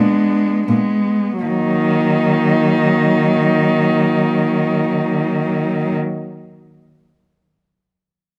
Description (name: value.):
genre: classical, lyrical piece for cello ensemble.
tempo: free time.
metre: none.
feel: none.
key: Eb minor.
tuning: A4 = 443 Hz.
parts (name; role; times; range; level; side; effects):
rich cello; melody; 0.0-6.0 s; D4 to Eb4; -24 LUFS; equal; none.
clear cello; second line; 0.0-5.9 s; Bb3 to Cb4; -23 LUFS; equal; none.
warm cello; accompaniment; 0.0-5.9 s; Gb3 to Ab3; -21 LUFS; equal; none.
rich cello; bass; 0.0-6.0 s; Bb2 to Eb3; -21 LUFS; equal; none.
room: light reverb.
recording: close, detailed microphones.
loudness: -16 LUFS.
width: mono.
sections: 0.0-1.4 A section; 1.4-5.8 B section.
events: slowing down 0.0-1.4.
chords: 0.0 Bb7b9 (rootless); 1.4 Ebm.